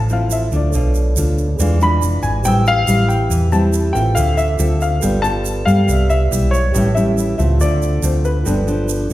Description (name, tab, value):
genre	bossa nova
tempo	140 BPM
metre	4/4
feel	straight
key	unclear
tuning	A4 = 440 Hz
part	dark baby grand piano	melody	0.0-9.1 s	B4 to B5	-21 LUFS	left 2 dB	none
part	nylon-string guitar	accompaniment	0.0-9.1 s	G2 to A4	-20 LUFS	left 1 dB	none
part	tine electric piano	accompaniment	0.0-9.1 s	F4 to E6	-27 LUFS	right 4 dB	overdrive
part	hollow-body short-scale fingered electric bass	bass	0.0-9.1 s	F1 to G2	-16 LUFS	equal	none
part	egg shaker	percussion	0.1-9.1 s	none	-30 LUFS	right 8 dB	none
room	wet recital hall reverb, RT60 1.4 s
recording	recorded in a church or concert hall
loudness	-14 LUFS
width	side -15 dB against mid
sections	0.0-9.1 A section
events	none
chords	0.0 Dm9; 0.7 Bm7b5; 1.6 E7b9; 2.5 Am7; 4.2 Dm7; 5.0 G9; 5.9 Cmaj7; 6.7 A7; 7.6 Dm7; 8.5 G7